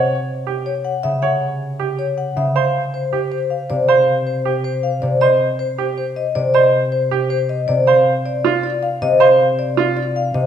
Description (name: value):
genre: classical, minimalist pattern music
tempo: 316 BPM (eighths)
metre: 7/8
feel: straight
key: unclear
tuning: A4 = 439 Hz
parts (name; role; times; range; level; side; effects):
- vibraphone with medium mallets; melody; 0.0-10.5 s; C5 to Gb5; -20 LUFS; left 6 dB; none
- clear baby grand piano; arpeggios; 0.0-10.0 s; F4 to Db5; -20 LUFS; right 10 dB; none
- concert harp; accompaniment; 1.0-10.5 s; C3 to Db3; -18 LUFS; equal; none
room: moderate recital hall reverb, RT60 1.3 s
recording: none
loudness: -15 LUFS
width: side -9 dB against mid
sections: 0.0-10.5 A section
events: none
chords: 0.0 Dbsus4; 2.6 Dm7 (rootless); 7.9 F5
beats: 0.09 0.28 0.47 0.66 0.85 1.04 | 1.23 1.42 1.61 1.80 1.99 2.18 2.37 | 2.56 2.75 2.94 3.13 3.32 3.51 3.69 | 3.88 4.08 4.26 4.46 4.64 4.83 5.03 | 5.21 5.40 5.59 5.78 5.97 6.16 6.35 | 6.54 6.73 6.92 7.11 7.30 7.49 7.68 | 7.87 8.06 8.25 8.44 8.63 8.82 9.01 | 9.20 9.39 9.58 9.77 9.96 10.15 10.34